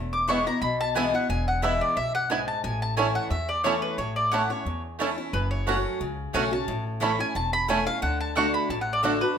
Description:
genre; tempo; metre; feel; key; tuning
bluegrass; 178 BPM; 4/4; swing 53% on 8ths; A major; A4 = 442 Hz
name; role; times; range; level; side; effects
picked steel-string acoustic guitar; accompaniment; 0.0-9.4 s; E2 to F#4; -29 LUFS; left 2 dB; none
upright bass; bass; 0.0-9.2 s; E1 to E2; -32 LUFS; equal; none
mandolin; melody; 0.1-9.4 s; A4 to D6; -27 LUFS; equal; none
bluegrass banjo; arpeggios; 0.3-9.1 s; A3 to F#4; -32 LUFS; right 4 dB; none
mandolin; stabs; 0.3-9.1 s; A3 to A5; -30 LUFS; right 5 dB; none
room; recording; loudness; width
moderate large studio reverb, RT60 1.2 s; minimal, uncompressed stereo recording; -23 LUFS; side -8 dB against mid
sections
0.0-5.3 A section; 5.3-9.4 B section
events
none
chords
0.0 E; 2.6 A; 5.3 F#m; 6.7 A; 8.0 D

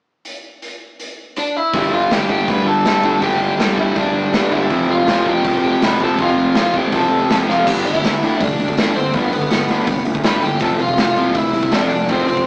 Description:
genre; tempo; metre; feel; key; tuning
punk rock; 162 BPM; 4/4; straight; G mixolydian; A4 = 439 Hz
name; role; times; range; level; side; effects
raw garage drum kit; drums; 0.2-12.5 s; crash cymbal, hi-hat, kick drum, snare drum; -20 LUFS; equal; none
lead guitar through a small cranked amp; melody; 1.4-12.5 s; B3 to B5; -18 LUFS; equal; overdrive
crunchy overdriven guitar; riff; 1.7-12.5 s; F2 to G3; -21 LUFS; equal; none
overdriven semi-hollow guitar; riff; 1.7-7.7 s; F2 to G3; -20 LUFS; right 1 dB; none
fuzz picked electric bass; bass; 1.7-12.4 s; F1 to D2; -23 LUFS; equal; overdrive
room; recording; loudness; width
moderate stone room reverb, RT60 1.2 s; rough rehearsal-room recording, tube saturation, small speaker sound; -14 LUFS; side -29 dB against mid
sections
0.3-1.7 A section; 1.7-7.7 B section; 7.7-12.5 C section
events
drum fill 7.5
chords
0.3 Dsus2; 1.7 G5; 4.7 F; 7.7 G; 10.6 F5

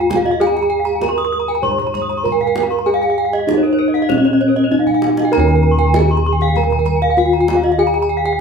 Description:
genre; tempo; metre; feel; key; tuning
Balinese gamelan; 97 BPM; 4/4; straight; unclear; A4 = 440 Hz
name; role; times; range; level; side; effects
gamelan-type bronze metallophone; melody; 0.0-8.4 s; Db4-45c to Db5-45c; -16 LUFS; right 1 dB; slapback echo
gamelan-type bronze metallophone; arpeggios; 0.0-8.3 s; Db5-45c to Db6-45c; -21 LUFS; right 4 dB; none
gamelan-type bossed gongs; bass; 0.0-8.4 s; Eb2 to Bb4+25c; -19 LUFS; left 2 dB; none
gamelan-type bronze metallophone; arpeggios; 0.1-8.4 s; Bb4+25c to Eb6; -22 LUFS; left 5 dB; none
kendang; percussion; 0.1-8.3 s; none; -25 LUFS; right 4 dB; none
room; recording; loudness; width
moderate studio reverb, RT60 0.8 s; band playing live in one room; -13 LUFS; side -5 dB against mid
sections
0.0-5.3 A section; 5.3-8.4 A section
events
drum fill 4.7-5.3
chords
none

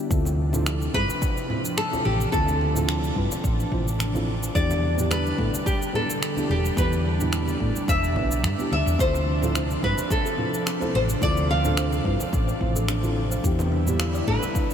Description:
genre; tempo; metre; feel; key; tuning
sunset chillout; 108 BPM; 4/4; swing 54% on 16ths; D dorian; A4 = 439 Hz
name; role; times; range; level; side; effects
mellow FM electric piano; accompaniment; 0.0-14.4 s; B3 to C5; -31 LUFS; moving between left 5 dB and right 3 dB; chorus, auto-pan, tape echo
airy breathy pad; sustained chords; 0.0-14.7 s; C3 to E4; -30 LUFS; right 1 dB; chorus
hollow-body short-scale fingered electric bass; bass; 0.1-14.4 s; E1 to A2; -25 LUFS; equal; none
electronic kick drum; drums; 0.1-14.7 s; none; -27 LUFS; equal; none
electronic shaker and finger snaps; drums; 0.1-14.7 s; none; -33 LUFS; equal; none
congas; percussion; 0.3-14.7 s; none; -35 LUFS; left 1 dB; none
nylon-string guitar; melody; 0.9-14.7 s; G4 to F5; -28 LUFS; equal; lush chorus, analog delay
kalimba; arpeggios; 9.0-14.7 s; B3 to D5; -34 LUFS; left 1 dB; tape echo
room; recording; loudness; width
moderate huge ambient reverb, RT60 8.3 s; dreamy mix soaked in reverb; -21 LUFS; side -8 dB against mid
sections
0.1-14.7 A section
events
none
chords
0.1 Dm9; 4.6 Em7; 9.0 Dm9; 13.4 Em7

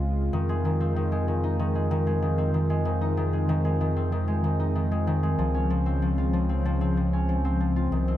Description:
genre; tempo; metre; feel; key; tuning
folktronica; 95 BPM; 4/4; straight; F minor; A4 = 440 Hz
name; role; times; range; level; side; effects
warm analog pad; sustained chords; 0.0-8.2 s; Db3 to F4; -30 LUFS; equal; chorus
warm sub bass; bass; 0.0-8.2 s; C2 to F2; -26 LUFS; equal; none
concert harp; arpeggios; 0.3-8.2 s; Eb3 to F4; -27 LUFS; left 2 dB; tape echo
room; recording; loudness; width
moderate echo chamber reverb, RT60 2.3 s; dark, warm production; -23 LUFS; side -12 dB against mid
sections
0.0-8.2 A section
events
none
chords
0.3 Fm7; 5.4 Dbmaj7

